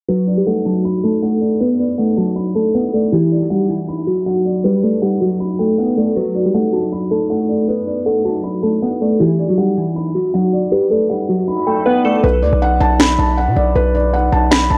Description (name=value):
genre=hip hop, trap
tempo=158 BPM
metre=4/4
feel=half-time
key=B minor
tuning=A4 = 440 Hz
part: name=glassy digital keys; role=melody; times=0.1-12.2 s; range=E3 to B4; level=-18 LUFS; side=equal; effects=chorus, tape echo
part: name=felt-muted upright piano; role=accompaniment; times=0.1-14.8 s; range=G4 to B5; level=-22 LUFS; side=equal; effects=none
part: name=distorted 808-style bass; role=bass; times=12.2-14.8 s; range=B1 to B2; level=-18 LUFS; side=equal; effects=distortion, transformer saturation
part: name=electronic snare drum and finger snaps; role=drums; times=13.0-14.6 s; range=none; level=-16 LUFS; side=equal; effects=overdrive, vintage 12-bit sampler grit
room=light reverb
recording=dry, gritty hardware recording, low-pass filter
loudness=-16 LUFS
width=mono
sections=0.1-12.2 A section; 12.2-14.8 B section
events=filter sweep 0.1-12.2; hi-hats muted 12.2-14.8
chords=0.1 Bm7; 3.1 Gmaj7; 6.2 Bm7; 9.2 Gmaj7; 12.2 Bm7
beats=| 0.09 0.47 0.84 1.22 | 1.60 1.98 2.36 2.74 | 3.12 3.50 3.88 4.26 | 4.64 5.02 5.40 5.78 | 6.16 6.54 6.92 7.30 | 7.68 8.06 8.44 8.82 | 9.20 9.58 9.96 10.34 | 10.72 11.10 11.48 11.86 | 12.24 12.62 13.00 13.38 | 13.76 14.14 14.52